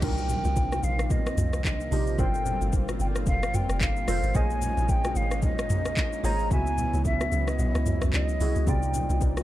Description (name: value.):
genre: amapiano.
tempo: 111 BPM.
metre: 4/4.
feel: swing 58% on 16ths.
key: unclear.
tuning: A4 = 441 Hz.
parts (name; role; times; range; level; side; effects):
mellow hollow jazz flute; melody; 0.0-9.2 s; Eb5 to Bb5; -31 LUFS; left 1 dB; digital delay.
glassy digital keys; accompaniment; 0.0-9.4 s; C3 to Fb5; -33 LUFS; right 2 dB; chorus.
lush unison pad; sustained chords; 0.0-9.4 s; Bb2 to F4; -36 LUFS; right 1 dB; chorus.
deep log drum bass; bass; 0.0-9.4 s; F1 to Db2; -28 LUFS; equal; none.
smooth R&B drum kit; drums; 0.0-9.4 s; crash cymbal, handclaps, hi-hat, kick drum, rim click, shaker, toms; -28 LUFS; equal; none.
congas and bongos; percussion; 0.0-9.4 s; none; -36 LUFS; left 2 dB; none.
riser and impact; sound effects; 0.0-2.2 s; none; -38 LUFS; equal; none.
room: little or no reverb.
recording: dark, warm production.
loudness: -23 LUFS.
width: side -14 dB against mid.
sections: 0.0-9.4 A section.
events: impact 0.0-2.2; kick muted 7.6-8.7.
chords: 0.0 Cm11; 2.2 Gm11; 4.3 Bbm11; 6.5 Dbm11; 8.7 Cm11.